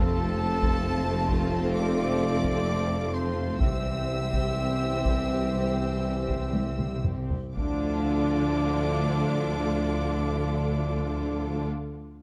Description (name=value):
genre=cinematic, epic orchestral film score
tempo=58-68 BPM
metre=4/4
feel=straight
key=D minor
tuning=A4 = 438 Hz
part: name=warm symphonic violin section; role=melody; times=0.0-11.6 s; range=A5 to E6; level=-41 LUFS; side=equal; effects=none
part: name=warm symphonic violin section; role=second line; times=0.0-11.7 s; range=F4 to C5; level=-38 LUFS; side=equal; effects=none
part: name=rich symphonic viola section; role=accompaniment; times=0.0-11.7 s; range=D3 to D4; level=-36 LUFS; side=equal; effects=none
part: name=dark French horn section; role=sustained chords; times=0.0-11.7 s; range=G3 to D4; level=-39 LUFS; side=equal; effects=none
part: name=warm trombone section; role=sustained chords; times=0.0-11.6 s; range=A2 to F3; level=-39 LUFS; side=equal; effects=none
part: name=clear trumpet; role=stabs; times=0.0-11.7 s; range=A4 to E5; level=-37 LUFS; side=equal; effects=none
part: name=mellow tuba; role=bass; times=0.0-11.6 s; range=F1 to D2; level=-36 LUFS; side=equal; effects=none
part: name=rich studio cello section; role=bass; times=0.0-11.7 s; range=C2 to F2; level=-36 LUFS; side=equal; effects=none
part: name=rich studio double bass section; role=bass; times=0.0-11.7 s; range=F1 to D2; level=-35 LUFS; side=equal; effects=none
part: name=taiko ensemble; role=drums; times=0.6-9.6 s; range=none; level=-32 LUFS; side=equal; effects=none
part: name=timpani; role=percussion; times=7.6-11.7 s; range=none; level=barely audible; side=none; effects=none
room=moderate scoring stage reverb, RT60 1.5 s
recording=none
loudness=-27 LUFS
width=mono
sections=0.0-7.6 A section; 7.6-11.7 B section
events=slowing down 0.0-7.6; drum fill 6.5-7.6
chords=0.0 F; 3.6 C; 7.6 Dm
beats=0.85 1.75 2.67 | 3.61 4.57 5.54 6.54 | 7.56 8.59 9.61 10.63